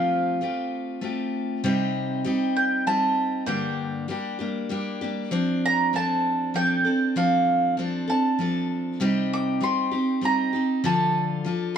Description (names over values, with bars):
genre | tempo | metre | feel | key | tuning
acoustic folk duo or small band | 98 BPM | 3/4 | straight | C dorian | A4 = 442 Hz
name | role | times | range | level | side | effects
mandolin | melody | 0.0-11.4 s | F5 to D6 | -24 LUFS | right 2 dB | none
picked steel-string acoustic guitar | accompaniment | 0.0-11.8 s | G2 to A4 | -24 LUFS | equal | none
room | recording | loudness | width
moderate studio reverb, RT60 0.5 s | dark, warm production | -22 LUFS | side -8 dB against mid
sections
0.0-1.6 A section; 1.6-11.8 B section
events
none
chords
0.0 Fadd9; 1.6 Cm; 3.5 Gm; 5.3 Dm7/F; 9.0 Cm; 10.8 Dm